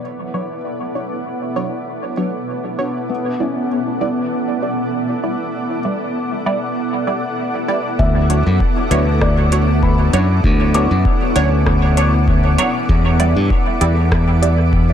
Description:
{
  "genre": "ambient dub",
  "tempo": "98 BPM",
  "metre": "4/4",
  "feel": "swing 54% on 16ths",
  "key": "unclear",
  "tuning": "A4 = 440 Hz",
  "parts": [
    { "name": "granular cloud pad", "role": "sustained chords", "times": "0.0-14.9 s", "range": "B3 to D6", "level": "-21 LUFS", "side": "equal", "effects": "built-in reverb" },
    { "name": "felt-muted upright piano", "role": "arpeggios", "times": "0.0-13.7 s", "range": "B3 to D6", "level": "-27 LUFS", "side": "left 4 dB", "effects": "tape echo" },
    { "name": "filtered dub chord stab", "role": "stabs", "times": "0.3-14.6 s", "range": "F#3 to D5", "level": "-23 LUFS", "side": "right 3 dB", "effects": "phaser, analog chorus, cassette tape, dub echo" },
    { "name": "modern bright fingered electric bass", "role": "bass", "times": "8.0-14.9 s", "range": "D2 to G2", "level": "-14 LUFS", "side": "equal", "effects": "none" },
    { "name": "electronic kick drum", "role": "drums", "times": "8.0-14.9 s", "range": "none", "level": "-18 LUFS", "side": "equal", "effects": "overdrive" },
    { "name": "organic electronic drum kit", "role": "drums", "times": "8.3-14.6 s", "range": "hi-hat, rim click", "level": "-27 LUFS", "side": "equal", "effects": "dub echo" }
  ],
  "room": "light reverb",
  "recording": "none",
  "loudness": "-15 LUFS",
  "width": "side -9 dB against mid",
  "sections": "0.0-8.0 A section; 8.0-14.9 B section",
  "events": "filter sweep on ambient pad 0.0-8.0; filter sweep on synth stab 0.0-8.0",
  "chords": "0.0 Dmaj7; 3.1 Em7; 8.0 Dmaj7; 12.9 Em7",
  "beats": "0.03 | 0.65 1.26 1.87 2.48 | 3.10 3.71 4.32 4.93 | 5.54 6.16 6.77 7.38 | 7.99 8.61 9.22 9.83 | 10.44 11.05 11.67 12.28 | 12.89 13.50 14.12 14.73"
}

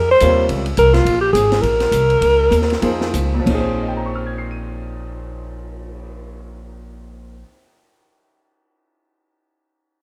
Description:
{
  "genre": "modal jazz",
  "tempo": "180-212 BPM",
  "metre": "4/4",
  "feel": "swing 59% on 8ths",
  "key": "Bb dorian",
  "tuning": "A4 = 441 Hz",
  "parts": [
    { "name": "warm alto saxophone", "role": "melody", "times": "0.0-3.1 s", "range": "F4 to C5", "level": "-16 LUFS", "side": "equal", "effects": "none" },
    { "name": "upright bass", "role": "bass", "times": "0.0-7.4 s", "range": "Ab1 to F2", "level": "-24 LUFS", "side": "equal", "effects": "none" },
    { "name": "bright upright piano", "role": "accompaniment", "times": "0.2-0.6, 2.8-8.0 s", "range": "Bb2 to Eb7", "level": "-27 LUFS", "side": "equal", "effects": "none" },
    { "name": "open jazz drum kit", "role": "drums", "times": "0.2-6.1 s", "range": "crash cymbal, cymbal swell, hi-hat, kick drum, ride cymbal, snare drum", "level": "-30 LUFS", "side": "equal", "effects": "none" }
  ],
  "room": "moderate plate reverb, RT60 1.0 s",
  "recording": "rough home demo mix",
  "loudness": "-16 LUFS",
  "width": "mono",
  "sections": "0.0-3.5 A section; 3.5-6.1 B section",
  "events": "slowing down 1.1-3.5",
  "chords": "0.0 Bbm11",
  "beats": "0.21 0.49 0.78 | 1.06 1.34 1.63 1.92 | 2.21 2.52 2.83 3.14 | 3.47 3.80 4.14 4.47 | 4.80 5.14 5.47 5.80"
}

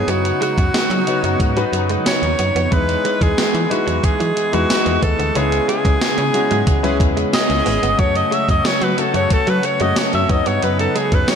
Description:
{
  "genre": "1980s-style pop",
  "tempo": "91 BPM",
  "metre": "4/4",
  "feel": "straight",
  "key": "E major",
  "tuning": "A4 = 442 Hz",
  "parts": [
    { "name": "bright alto saxophone", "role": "melody", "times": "0.0-11.4 s", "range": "F#4 to E5", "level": "-19 LUFS", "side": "right 1 dB", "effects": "digital delay, slapback echo" },
    { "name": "warm concert grand piano", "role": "accompaniment", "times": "0.0-11.4 s", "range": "C#3 to C#5", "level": "-22 LUFS", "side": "left 5 dB", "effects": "slapback echo" },
    { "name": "chorused pulse-width pad", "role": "sustained chords", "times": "0.0-11.4 s", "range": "C#3 to F#4", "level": "-27 LUFS", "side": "right 1 dB", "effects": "none" },
    { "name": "direct-recorded clean electric guitar", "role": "riff", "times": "0.0-11.4 s", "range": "F#3 to C#4", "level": "-27 LUFS", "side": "right 6 dB", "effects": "none" },
    { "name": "slap-like FM bass", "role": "bass", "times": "0.0-11.4 s", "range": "G1 to F#3", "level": "-22 LUFS", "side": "equal", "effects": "none" },
    { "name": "gated 80s digital drum machine", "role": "drums", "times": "0.1-11.4 s", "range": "hi-hat, kick drum, snare drum, tambourine", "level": "-20 LUFS", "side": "equal", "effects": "gated reverb, gated reverb snare" },
    { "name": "analog synth brass", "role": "stabs", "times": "6.8-7.8 s", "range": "C#4 to G#4", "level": "-27 LUFS", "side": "right 1 dB", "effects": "chorus, digital delay, slapback echo" }
  ],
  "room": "moderate lush hall reverb, RT60 2.9 s",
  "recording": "big arena sound",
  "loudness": "-14 LUFS",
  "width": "side -7 dB against mid",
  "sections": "0.0-11.4 A section",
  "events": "band accent 5.4-8.0",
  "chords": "0.0 Badd9/F#; 2.7 Emaj7; 5.4 C#m7; 8.0 F#m; 10.3 Badd9/F#",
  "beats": "| 0.08 0.74 1.40 2.06 | 2.72 3.38 4.04 4.70 | 5.35 6.01 6.67 7.33 | 7.99 8.65 9.31 9.97 | 10.63 11.29"
}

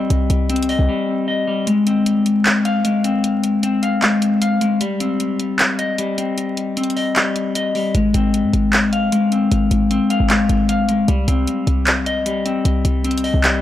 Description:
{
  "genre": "hip hop, trap",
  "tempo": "153 BPM",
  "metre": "4/4",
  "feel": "half-time",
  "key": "unclear",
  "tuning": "A4 = 441 Hz",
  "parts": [
    { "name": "clean electric guitar", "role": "arpeggios", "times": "0.0-13.6 s", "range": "G3 to F5", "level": "-17 LUFS", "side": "left 2 dB", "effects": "low-pass filter, tape echo" },
    { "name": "short 808-style bass", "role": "bass", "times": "0.0-0.9, 7.9-13.6 s", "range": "Ab1 to Ab2", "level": "-19 LUFS", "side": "equal", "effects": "none" },
    { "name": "trap drum kit", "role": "drums", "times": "0.1-13.5 s", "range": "handclaps, hi-hat", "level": "-20 LUFS", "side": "equal", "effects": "none" }
  ],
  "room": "little or no reverb",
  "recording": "dry, gritty hardware recording, transformer saturation, vinyl crackle",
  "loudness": "-15 LUFS",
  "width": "side -12 dB against mid",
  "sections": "0.0-1.7 A section; 1.7-13.6 B section",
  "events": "break 0.9-1.7; kick muted 1.7-7.9",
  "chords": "0.0 Cm; 1.7 Ab6; 4.8 Cm; 7.9 Ab6; 11.1 Cm",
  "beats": "| 0.10 0.49 0.89 1.28 | 1.67 2.06 2.46 2.85 | 3.24 3.63 4.02 4.42 | 4.81 5.20 5.59 5.99 | 6.38 6.77 7.16 7.55 | 7.95 8.34 8.73 9.12 | 9.51 9.91 10.30 10.69 | 11.08 11.47 11.87 12.26 | 12.65 13.04 13.44"
}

